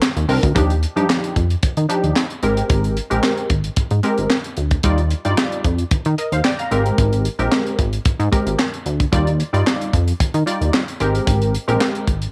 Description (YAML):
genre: early-eighties boogie funk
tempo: 112 BPM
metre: 4/4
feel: straight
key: unclear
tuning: A4 = 440 Hz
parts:
  - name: tight funk drum kit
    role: drums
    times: 0.0-12.3 s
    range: handclaps, hi-hat, kick drum, snare drum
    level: -22 LUFS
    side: equal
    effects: none
  - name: chorused synth bass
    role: bass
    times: 0.2-12.3 s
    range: Ab1 to Eb3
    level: -21 LUFS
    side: equal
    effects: none
  - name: funky polysynth comp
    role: accompaniment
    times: 0.3-12.1 s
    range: Eb3 to Bb5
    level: -23 LUFS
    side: equal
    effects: chorus
room: moderate spring reverb, RT60 1.2 s, studio reverb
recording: none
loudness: -19 LUFS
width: mono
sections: 0.6-12.3 A section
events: none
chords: 0.0 Cm9; 0.6 Ebmaj9; 2.4 Abmaj9; 4.8 Ebmaj9; 6.7 Abmaj9; 9.1 Ebmaj9; 11.0 Abmaj9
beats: 0.02 | 0.56 1.09 1.63 2.16 | 2.70 3.23 3.77 4.31 | 4.84 5.38 5.91 6.45 | 6.98 7.52 8.06 8.59 | 9.13 9.66 10.20 10.73 | 11.27 11.81